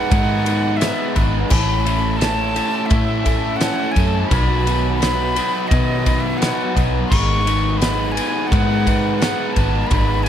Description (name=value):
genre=rock, shoegaze and dream pop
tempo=86 BPM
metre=4/4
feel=straight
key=unclear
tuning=A4 = 442 Hz
part: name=breathy bright concert flute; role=melody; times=0.0-10.3 s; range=D#5 to C#6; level=-24 LUFS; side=equal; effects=slapback echo
part: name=overdriven electric guitar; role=riff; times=0.0-10.3 s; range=G#2 to B4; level=-21 LUFS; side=equal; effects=lush chorus
part: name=vintage muted fingered electric bass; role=bass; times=0.1-10.3 s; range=G#1 to B2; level=-21 LUFS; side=equal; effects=none
part: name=loose indie drum kit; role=drums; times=0.1-10.3 s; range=crash cymbal, kick drum, ride cymbal, snare drum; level=-20 LUFS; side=equal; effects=none
room=light reverb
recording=none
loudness=-16 LUFS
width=side -9 dB against mid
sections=0.0-10.3 A section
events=none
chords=0.0 G#m7; 1.5 A; 4.3 B; 7.1 G#m7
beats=0.11 0.81 | 1.51 2.21 2.91 3.61 | 4.31 5.01 5.71 6.41 | 7.11 7.81 8.51 9.21 | 9.91